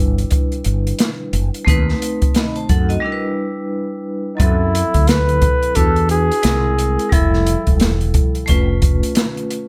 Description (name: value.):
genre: hip hop, jazz-hop.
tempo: 88 BPM.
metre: 4/4.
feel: swing 60% on 16ths.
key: E minor.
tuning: A4 = 440 Hz.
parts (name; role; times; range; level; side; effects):
vibraphone with hard mallets; accompaniment; 0.0-9.7 s; F3 to B5; -25 LUFS; equal; plate reverb.
mellow fretless electric bass; bass; 0.0-9.0 s; E1 to F#2; -20 LUFS; equal; lush chorus.
open jazz drum kit; drums; 0.2-9.7 s; hi-hat, kick drum, snare drum; -19 LUFS; equal; none.
breathy flugelhorn; melody; 4.4-7.8 s; D#4 to B4; -21 LUFS; equal; plate reverb.
room: little or no reverb.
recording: none.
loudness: -17 LUFS.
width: mono.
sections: 0.0-4.4 A section; 4.4-9.7 B section.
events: break 3.0-4.4.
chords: 0.0 Em7; 1.7 B7b9/D#; 3.0 Em7; 4.4 F#m7b5; 5.8 Esus2; 6.4 Caug7; 7.1 Fmaj9; 8.5 C#aug7/E#.